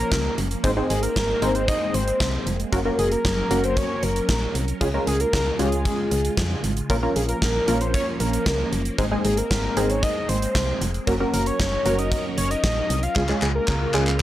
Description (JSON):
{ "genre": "synth-pop", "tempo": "115 BPM", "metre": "4/4", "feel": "straight", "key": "unclear", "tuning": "A4 = 438 Hz", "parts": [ { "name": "fat analog lead", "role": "melody", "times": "0.0-14.1 s", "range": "Ab4 to F5", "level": "-26 LUFS", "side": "equal", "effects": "tape echo" }, { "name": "phased string machine", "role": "sustained chords", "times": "0.0-14.2 s", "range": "Db3 to Bb4", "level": "-31 LUFS", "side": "equal", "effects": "ensemble chorus, phaser" }, { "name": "solid FM bass", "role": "bass", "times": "0.0-14.2 s", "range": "F1 to F2", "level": "-26 LUFS", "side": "equal", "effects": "none" }, { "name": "gated 80s drum kit", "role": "drums", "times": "0.1-14.2 s", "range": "handclaps, hi-hat, kick drum, snare drum", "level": "-26 LUFS", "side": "equal", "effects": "none" }, { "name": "funky polysynth comp", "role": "accompaniment", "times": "0.6-14.2 s", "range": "Ab3 to C5", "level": "-25 LUFS", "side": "equal", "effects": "chorus" }, { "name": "swell", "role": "sound effects", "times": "13.5-14.2 s", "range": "none", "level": "-32 LUFS", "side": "equal", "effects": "none" } ], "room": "studio reverb", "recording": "transformer saturation", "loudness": "-20 LUFS", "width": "side -13 dB against mid", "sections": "0.0-14.2 A section", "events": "drum fill 13.2-14.2; swell 13.5-14.2", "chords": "0.0 Bbm; 0.6 Abadd9; 2.7 Gb; 4.8 Db; 6.9 Bbm; 9.0 Abadd9; 11.1 Gb; 13.2 Db" }